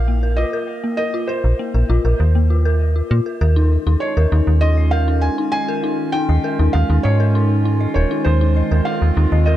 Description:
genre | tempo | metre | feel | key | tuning
IDM | 99 BPM | 4/4 | straight | unclear | A4 = 440 Hz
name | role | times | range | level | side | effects
felt-muted upright piano | melody | 0.0-9.6 s | C5 to Ab5 | -25 LUFS | right 1 dB | tape echo
metallic FM bass | bass | 0.0-9.6 s | Eb1 to Bb2 | -15 LUFS | equal | none
dark detuned synth bell | arpeggios | 0.1-9.6 s | Bb3 to Eb5 | -23 LUFS | left 3 dB | chorus, phaser, dub echo
warbly tape-like pad | sustained chords | 3.8-9.6 s | Eb3 to F4 | -24 LUFS | right 3 dB | chorus, built-in reverb
room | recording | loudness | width
light reverb | dark, warm production | -15 LUFS | side -13 dB against mid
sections
0.0-9.6 A section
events
none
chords
0.0 Bbsus4; 3.4 Eb9sus4

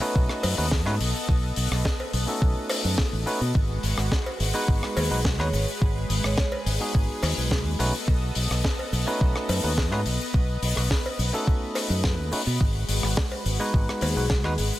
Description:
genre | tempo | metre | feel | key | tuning
nu-disco, nu disco | 106 BPM | 4/4 | straight | B mixolydian | A4 = 440 Hz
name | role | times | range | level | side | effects
bell-like tine electric piano | accompaniment | 0.0-14.5 s | G#3 to B4 | -31 LUFS | equal | tape echo
lush unison pad | sustained chords | 0.0-14.8 s | G#3 to D#5 | -33 LUFS | equal | chorus, sidechain pumping
tight funk drum kit | drums | 0.0-14.8 s | hi-hat, rim click, shaker, snare drum | -30 LUFS | left 2 dB | none
fingered electric bass | bass | 0.2-14.7 s | G#1 to B2 | -26 LUFS | equal | none
electronic kick drum | drums | 0.2-14.4 s | none | -24 LUFS | equal | none
cowbell | percussion | 0.4-14.1 s | none | -35 LUFS | equal | none
vibraphone with medium mallets | melody | 5.0-6.5, 14.0-14.5 s | G#4 to C#5 | -34 LUFS | left 1 dB | tape echo
room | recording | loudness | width
small room ambience | none | -22 LUFS | side -15 dB against mid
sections
0.0-14.8 A section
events
none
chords
0.0 B7; 3.5 G#m7; 7.8 B7; 12.6 G#m7

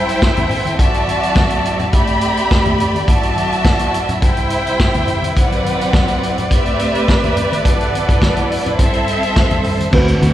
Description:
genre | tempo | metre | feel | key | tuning
disco | 105 BPM | 4/4 | straight | A dorian | A4 = 441 Hz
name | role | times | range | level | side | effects
warm studio violin section | second line | 0.0-9.9 s | B3 to B5 | -18 LUFS | equal | slapback echo
clear studio string section | sustained chords | 0.0-10.3 s | C3 to E5 | -20 LUFS | right 1 dB | none
vintage drum kit | drums | 0.1-10.3 s | crash cymbal, hi-hat, kick drum, snare drum | -16 LUFS | equal | none
congas | percussion | 0.4-10.3 s | none | -24 LUFS | left 2 dB | none
clean electric guitar | accompaniment | 9.9-10.3 s | C4 to B4 | -19 LUFS | right 3 dB | wah, wide subtle chorus, slapback echo
fingered electric bass | bass | 9.9-10.3 s | D2 | -12 LUFS | equal | none
room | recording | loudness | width
light reverb | live gig heard through the venue's PA, recital hall reverb | -13 LUFS | side -12 dB against mid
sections
0.0-9.9 A section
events
none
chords
0.0 C; 0.8 D9; 1.9 Am11; 3.1 D9; 4.2 C; 5.4 D13; 6.5 Am11; 7.7 D13; 8.8 Am7

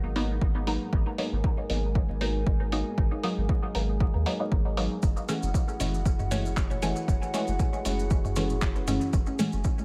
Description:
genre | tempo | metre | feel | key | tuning
dub techno | 117 BPM | 4/4 | swing 54% on 16ths | G# minor | A4 = 440 Hz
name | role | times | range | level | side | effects
dark analog pad | sustained chords | 0.0-9.8 s | G#3 to G#5 | -38 LUFS | equal | lush chorus, sidechain pumping
soft dub sub bass | bass | 0.0-9.6 s | F#1 to D#2 | -33 LUFS | equal | sidechain pumping
filtered dub chord stab | stabs | 0.2-9.6 s | E3 to D#4 | -34 LUFS | equal | phaser, cassette tape, dub echo
lo-fi sampler-style drum kit | drums | 0.2-9.5 s | handclaps, hi-hat | -40 LUFS | equal | none
electronic kick drum | drums | 0.4-9.8 s | none | -28 LUFS | equal | none
maracas | percussion | 5.0-9.8 s | none | -45 LUFS | equal | none
electronic toms | percussion | 5.8-9.5 s | none | -38 LUFS | equal | sidechain pumping on toms
room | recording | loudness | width
light reverb, digital ambience | vinyl crackle | -27 LUFS | mono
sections
0.0-9.8 A section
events
filter sweep on synth stab 0.0-9.8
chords
0.0 G#m9; 5.0 F#m9

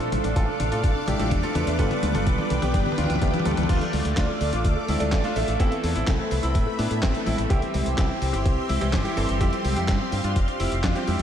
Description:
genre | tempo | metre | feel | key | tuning
italo disco | 126 BPM | 4/4 | straight | unclear | A4 = 440 Hz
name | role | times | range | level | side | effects
bright concert grand piano | melody | 0.0-11.2 s | A3 to A4 | -28 LUFS | left 1 dB | tape echo
lush unison pad | sustained chords | 0.0-11.2 s | G4 to D6 | -31 LUFS | equal | chorus, phaser
bright electric grand piano | stabs | 0.0-11.2 s | E3 to E5 | -31 LUFS | right 2 dB | ping-pong delay
dusty soul sampler-style drum kit | drums | 0.0-11.2 s | congas, crash cymbal, handclaps, hi-hat, snare drum, toms | -29 LUFS | left 1 dB | small room ambience
fingered electric bass with an envelope filter | bass | 0.1-11.2 s | F1 to A2 | -27 LUFS | equal | none
electronic kick drum | drums | 0.4-10.9 s | none | -24 LUFS | equal | small room ambience
room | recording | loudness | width
wet lush hall reverb, RT60 2.1 s | dreamy mix soaked in reverb | -21 LUFS | side -9 dB against mid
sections
0.0-3.7 A section; 3.7-11.2 B section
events
drum fill 0.0-3.7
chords
0.0 Dm/A; 1.8 G; 3.7 Dm; 5.6 Amadd9; 7.5 C; 9.4 Fsus2

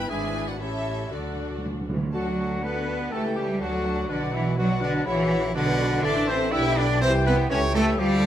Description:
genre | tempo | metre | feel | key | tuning
quick classical-period movement for symphony orchestra | 122 BPM | 2/4 | straight | D major | A4 = 440 Hz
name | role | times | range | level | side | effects
warm studio violin section | melody | 0.0-8.3 s | D5 to C6 | -37 LUFS | left 2 dB | none
hollow concert flute | second line | 0.0-8.3 s | A4 to G5 | -34 LUFS | left 3 dB | none
warm clarinet | second line | 0.0-8.3 s | D4 to E5 | -33 LUFS | left 2 dB | none
warm studio violin section | second line | 0.0-8.3 s | F#4 to E5 | -38 LUFS | left 1 dB | none
rich studio viola section | accompaniment | 0.0-8.3 s | C#4 to C5 | -35 LUFS | right 2 dB | none
dark French horn section | sustained chords | 0.0-8.3 s | B3 to C#5 | -32 LUFS | left 5 dB | none
warm studio cello section | bass | 0.0-8.3 s | G#2 to E4 | -27 LUFS | right 1 dB | none
warm studio double bass section | bass | 0.0-8.3 s | G#1 to D2 | -29 LUFS | right 2 dB | none
timpani | percussion | 1.1-2.1 s | D3 | -33 LUFS | right 2 dB | none
dark bassoon | accompaniment | 2.1-8.3 s | B2 to F3 | -33 LUFS | right 1 dB | none
clear trumpet | stabs | 2.1-8.3 s | D4 to E5 | -32 LUFS | right 1 dB | none
room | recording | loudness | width
moderate recital hall reverb, RT60 1.4 s | none | -22 LUFS | side -11 dB against mid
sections
0.0-2.1 A section; 2.1-8.3 A section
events
timpani fill 1.1-2.1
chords
0.1 E7/G#; 0.6 A7; 1.1 D; 3.1 A7/C#; 3.6 D; 4.1 Bm; 5.1 F#7/A#; 5.6 Bm; 6.0 Am; 6.5 G/B; 7.0 C; 7.5 A7/C#

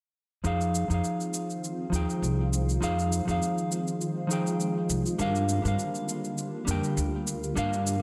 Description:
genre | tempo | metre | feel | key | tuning
sunset chillout | 101 BPM | 4/4 | swing 54% on 16ths | F dorian | A4 = 441 Hz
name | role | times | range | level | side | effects
mellow electric guitar | accompaniment | 0.4-8.0 s | F3 to G5 | -32 LUFS | equal | low-pass filter, digital delay
shimmering ambient pad | sustained chords | 1.2-8.0 s | D3 to F4 | -37 LUFS | equal | chorus, built-in reverb, phaser
upright bass | bass | 0.4-8.0 s | C2 to G2 | -31 LUFS | equal | none
shaker | drums | 0.4-8.0 s | none | -38 LUFS | equal | overdrive
room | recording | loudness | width
moderate lush hall reverb, RT60 2.6 s | none | -29 LUFS | mono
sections
0.4-8.0 A section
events
filter sweep on upright bass 0.4-8.0; filter sweep on clean electric guitar 0.4-8.0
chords
0.4 Fm7; 5.2 Gm7

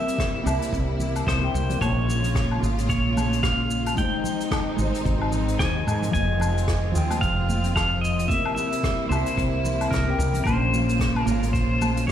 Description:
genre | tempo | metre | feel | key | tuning
sunset chillout | 111 BPM | 4/4 | swing 57% on 16ths | unclear | A4 = 440 Hz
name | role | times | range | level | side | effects
pedal steel guitar | melody | 0.0-12.1 s | Bb4 to Ab5 | -28 LUFS | equal | digital delay
mellow electric guitar | accompaniment | 0.0-12.1 s | F3 to G5 | -28 LUFS | moving between left 7 dB and right 5 dB | auto-pan, digital delay
clear studio string section | sustained chords | 0.0-12.1 s | C3 to F4 | -31 LUFS | left 2 dB | none
jazz brush drum kit | drums | 0.1-12.1 s | hi-hat, rim click, shaker, woodblock | -32 LUFS | left 2 dB | none
electronic kick drum | drums | 0.2-12.1 s | none | -28 LUFS | equal | none
woody fretless electric bass | bass | 0.5-12.1 s | F1 to Ab2 | -25 LUFS | equal | ensemble chorus
congas | percussion | 1.0-11.9 s | none | -34 LUFS | right 3 dB | none
room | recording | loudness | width
light reverb, small room ambience | played on a big sound system in a bare room, stone room reverb | -21 LUFS | side -10 dB against mid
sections
0.0-12.1 A section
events
none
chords
0.0 C7; 1.8 Bbm7; 4.0 Abmaj7; 6.1 Fm7; 8.3 C7; 10.5 Bbm7

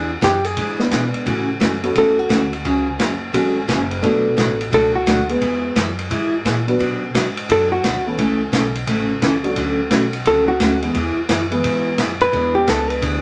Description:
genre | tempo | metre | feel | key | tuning
country, western swing | 173 BPM | 4/4 | swing 65% on 8ths | unclear | A4 = 441 Hz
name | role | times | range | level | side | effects
picked steel-string acoustic guitar | accompaniment | 0.0-13.2 s | B2 to A4 | -23 LUFS | equal | none
upright bass | bass | 0.0-13.2 s | F#1 to B2 | -30 LUFS | equal | none
hollow-body jazz guitar | melody | 0.2-2.5, 4.7-5.3, 7.5-8.0, 10.3-13.0 s | F#4 to B4 | -19 LUFS | equal | none
vintage drum kit | drums | 0.2-13.1 s | hi-hat, kick drum, ride cymbal, snare drum | -25 LUFS | equal | none
dark upright piano | accompaniment | 0.8-13.2 s | E3 to B4 | -23 LUFS | equal | none
room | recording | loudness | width
moderate club reverb, RT60 0.5 s | none | -18 LUFS | mono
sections
0.0-13.2 A section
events
hollow-body jazz guitar solo 0.0-13.2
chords
0.0 E7; 1.3 A6; 2.6 F#madd9; 4.0 Bm7; 5.4 E; 6.8 Bm; 8.2 A; 9.6 Dmaj7; 10.9 E; 12.3 E7

